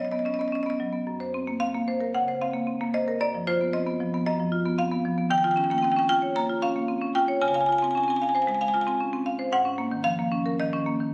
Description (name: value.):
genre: classical, contemporary piece for solo marimba.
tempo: 113 BPM.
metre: 4/4.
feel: rubato.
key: unclear.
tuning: A4 = 440 Hz.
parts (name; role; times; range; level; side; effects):
marimba with medium hard mallets; solo; 0.0-11.1 s; Gb2 to Bb5; -26 LUFS; equal; none.
room: moderate recital hall reverb, RT60 1.5 s.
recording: recorded on a phone in the room, studio reverb, compression.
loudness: -26 LUFS.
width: mono.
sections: 0.0-11.1 A section.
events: none.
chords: 0.0 Cbadd9; 1.1 Gbmaj7#11; 3.2 F5/Gb; 5.3 Eb9; 7.4 Dbmaj7; 9.5 Ab9sus4.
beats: 0.52 | 1.06 1.61 2.15 2.68 | 3.21 3.73 4.26 4.78 | 5.30 5.83 6.35 6.88 | 7.41 7.94 8.48 9.00 | 9.53 10.05 10.59.